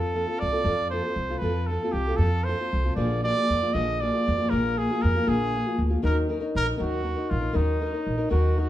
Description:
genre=mexican folk, mariachi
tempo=78 BPM (dotted quarters)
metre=6/8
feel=straight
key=Eb minor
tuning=A4 = 440 Hz
part: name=clear trumpet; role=melody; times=0.0-8.7 s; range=Eb4 to Eb5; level=-28 LUFS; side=right 2 dB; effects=none
part: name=nylon-string guitar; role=accompaniment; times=0.0-8.7 s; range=Bb2 to Bb4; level=-28 LUFS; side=left 2 dB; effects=none
part: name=upright bass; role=bass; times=0.0-8.7 s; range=Bb1 to F2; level=-26 LUFS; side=equal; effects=none
room=wet studio reverb, RT60 0.6 s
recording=heard from further back in the room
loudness=-23 LUFS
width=side -13 dB against mid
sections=0.0-8.7 A section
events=none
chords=0.0 F; 3.0 Bb7; 6.0 Ebm7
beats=0.66 | 1.43 2.20 | 2.97 3.75 | 4.52 5.28 | 6.04 6.80 | 7.55 8.32

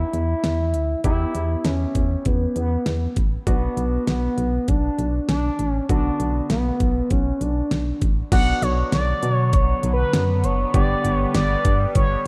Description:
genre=synth-pop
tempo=99 BPM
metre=4/4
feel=straight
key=unclear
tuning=A4 = 438 Hz
part: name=expressive synth lead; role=melody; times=0.0-12.3 s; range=B3 to F#5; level=-26 LUFS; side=equal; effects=chorus, slapback echo
part: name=clear concert grand piano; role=accompaniment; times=0.0-12.3 s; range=D3 to G4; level=-34 LUFS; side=equal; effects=none
part: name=solid FM bass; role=bass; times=0.0-12.2 s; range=F#1 to B2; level=-25 LUFS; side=equal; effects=none
part: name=pop drum kit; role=drums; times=0.1-12.1 s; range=crash cymbal, hi-hat, kick drum, snare drum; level=-25 LUFS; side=equal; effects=none
part: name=phased analog pad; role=sustained chords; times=8.3-12.3 s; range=D3 to B3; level=-31 LUFS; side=equal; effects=phaser, chorus
room=light reverb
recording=dark, warm production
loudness=-21 LUFS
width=mono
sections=0.0-8.3 A section; 8.3-12.3 B section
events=none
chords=0.0 Em; 3.5 Bm; 10.7 G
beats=0.44 | 1.04 1.65 2.26 2.86 | 3.47 4.08 4.68 5.29 | 5.89 6.50 7.11 7.71 | 8.32 8.92 9.53 10.13 | 10.74 11.35 11.95

